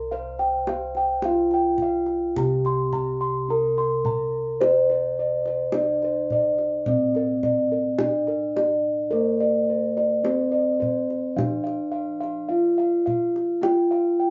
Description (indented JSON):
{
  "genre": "Javanese gamelan",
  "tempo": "53 BPM",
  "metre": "4/4",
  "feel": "straight",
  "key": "C slendro",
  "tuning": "A4 = 437 Hz",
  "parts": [
    { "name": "gamelan-type bronze metallophone", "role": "melody", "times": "0.0-14.3 s", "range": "Bb3-25c to C5", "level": "-27 LUFS", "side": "equal", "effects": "none" },
    { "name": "gamelan-type bossed gongs", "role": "bass", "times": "0.0-14.3 s", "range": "C2 to C5", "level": "-32 LUFS", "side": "equal", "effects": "none" },
    { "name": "gamelan-type bossed gongs", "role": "arpeggios", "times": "0.1-14.3 s", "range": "Bb4-25c to C6", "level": "-27 LUFS", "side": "equal", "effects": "none" },
    { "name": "kendang", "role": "percussion", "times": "0.4-14.1 s", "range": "none", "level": "-32 LUFS", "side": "equal", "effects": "none" }
  ],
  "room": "moderate studio reverb, RT60 0.6 s",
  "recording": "band playing live in one room, nothing above 7.5 kHz",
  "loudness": "-23 LUFS",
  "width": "mono",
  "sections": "0.0-14.3 A section",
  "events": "none",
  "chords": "none",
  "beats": "| 0.11 1.24 2.36 3.49 | 4.61 5.74 6.86 7.99 | 9.12 10.24 11.37 12.49 | 13.62"
}